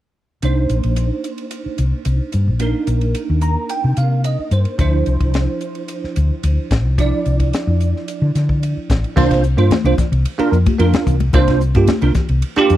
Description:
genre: electric jazz fusion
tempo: 110 BPM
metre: 4/4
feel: straight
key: C minor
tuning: A4 = 440 Hz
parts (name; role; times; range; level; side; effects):
- bell-like tine electric piano; accompaniment; 0.4-12.7 s; F3 to Bb5; -20 LUFS; right 4 dB; ensemble chorus
- woody fretless electric bass; bass; 0.4-12.8 s; A1 to D3; -16 LUFS; left 1 dB; none
- crisp fusion drum kit; drums; 0.4-12.8 s; crash cymbal, hi-hat, kick drum, ride cymbal, snare drum; -21 LUFS; left 1 dB; none
- congas; percussion; 9.2-12.3 s; none; -22 LUFS; left 7 dB; none
room: small room ambience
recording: dry, close 1970s-style studio recording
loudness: -14 LUFS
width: side -13 dB against mid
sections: 0.4-9.2 A section; 9.2-12.8 B section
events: tine electric piano fill 3.2-4.8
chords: 0.4 Cm9; 4.8 Dm9; 9.2 C9sus4

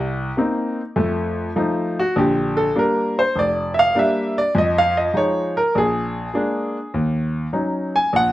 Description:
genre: solo jazz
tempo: 101 BPM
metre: 4/4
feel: swing 68% on 8ths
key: unclear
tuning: A4 = 440 Hz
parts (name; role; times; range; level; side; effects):
- clear concert grand piano; solo; 0.0-8.3 s; E#1 to G#5; -18 LUFS; equal; none
room: little or no reverb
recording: recorded outdoors, with no room sound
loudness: -18 LUFS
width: side -15 dB against mid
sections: 0.0-8.3 A section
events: grand piano solo 0.0-8.3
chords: 0.0 Cm7; 1.0 F7; 2.2 A#6; 4.5 Fm7; 5.7 A#7; 6.9 D#m7

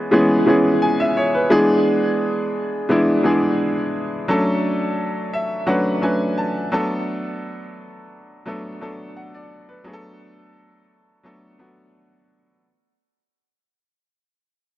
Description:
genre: soul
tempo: 86 BPM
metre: 4/4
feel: straight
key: B dorian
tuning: A4 = 442 Hz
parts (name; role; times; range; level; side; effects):
- clear grand piano; solo; 0.0-12.7 s; E3 to A5; -18 LUFS; equal; tape echo
room: light reverb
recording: dry, close 1970s-style studio recording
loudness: -17 LUFS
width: side -14 dB against mid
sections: 0.0-12.6 A section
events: fade-out 0.0-12.6; grand piano fill 5.0-7.1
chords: 0.0 C#m7; 1.5 E7; 4.3 Dmaj7; 6.7 Bm7

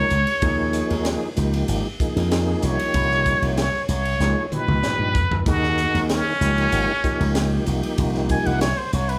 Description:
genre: electric jazz fusion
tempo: 95 BPM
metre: 4/4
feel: straight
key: unclear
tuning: A4 = 441 Hz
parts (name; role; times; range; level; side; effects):
- trumpet with plunger mute; melody; 0.0-9.2 s; Db4 to Ab5; -25 LUFS; equal; none
- tonewheel organ; accompaniment; 0.0-8.7 s; Bb2 to Bb4; -29 LUFS; equal; chorus vibrato, slow rotary speaker
- slap bass with an envelope filter; bass; 0.1-9.2 s; Ab1 to Ab2; -25 LUFS; equal; none
- crisp fusion drum kit; drums; 0.1-9.2 s; hi-hat, kick drum, ride cymbal, snare drum, toms; -29 LUFS; equal; none
room: light reverb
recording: band playing live in one room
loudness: -21 LUFS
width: mono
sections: 0.0-9.2 A section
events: muted trumpet solo 0.0-9.2; drum fill 4.2-5.5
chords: 0.4 Eb7sus4; 1.4 Dbadd9; 2.6 Cm7; 4.2 Bbm7/Db; 5.5 Ebsus4; 6.4 Dbadd9; 7.7 Cm7

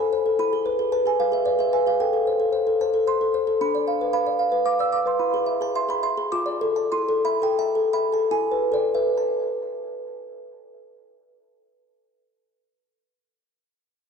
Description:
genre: classical, lullaby for music box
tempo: 66-115 BPM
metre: 3/4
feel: straight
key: A minor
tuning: A4 = 440 Hz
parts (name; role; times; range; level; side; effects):
- music box; solo; 0.0-13.4 s; D4 to E6; -20 LUFS; equal; analog delay
room: wet plate reverb, RT60 2.7 s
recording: dreamy mix soaked in reverb, cassette tape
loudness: -20 LUFS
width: side -6 dB against mid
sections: 0.0-9.2 A section; 9.2-14.1 B section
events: slowing down 4.4-9.2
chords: 0.4 E; 2.0 Am; 3.6 Bdim/D; 5.2 E; 6.3 Dm/F; 6.9 A5/E; 8.3 E7; 9.2 A5

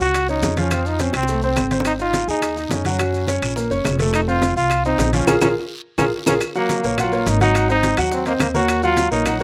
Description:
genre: latin, salsa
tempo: 211 BPM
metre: 4/4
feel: straight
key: unclear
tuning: A4 = 440 Hz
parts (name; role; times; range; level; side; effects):
- bright trombone; melody; 0.0-9.4 s; Bb3 to Gb4; -24 LUFS; equal; slapback echo
- clear upright piano; accompaniment; 0.0-9.4 s; F3 to Ab5; -24 LUFS; equal; slapback echo
- upright bass; bass; 0.0-9.4 s; F1 to Gb2; -26 LUFS; equal; none
- guiro; percussion; 0.0-9.4 s; none; -36 LUFS; equal; none
- maracas; percussion; 0.0-9.4 s; none; -36 LUFS; equal; none
- bongos; percussion; 0.1-9.4 s; none; -31 LUFS; equal; none
- claves; percussion; 0.1-9.4 s; none; -32 LUFS; equal; none
- congas; percussion; 0.1-9.4 s; none; -32 LUFS; equal; slapback echo
- timbales; percussion; 0.1-9.4 s; none; -30 LUFS; equal; slapback echo
room: little or no reverb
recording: recorded outdoors, with no room sound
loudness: -19 LUFS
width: mono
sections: 0.0-6.4 A section; 6.4-9.4 B section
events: drum fill 1.1-1.9, 5.3-6.4; band accent 5.3-6.4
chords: 0.0 Gb5; 0.7 F; 1.9 Ab; 3.0 Gbmaj7; 4.1 F; 5.3 Bb7(no3); 6.4 Ab13sus4; 7.5 Ab9; 8.7 Ebm7

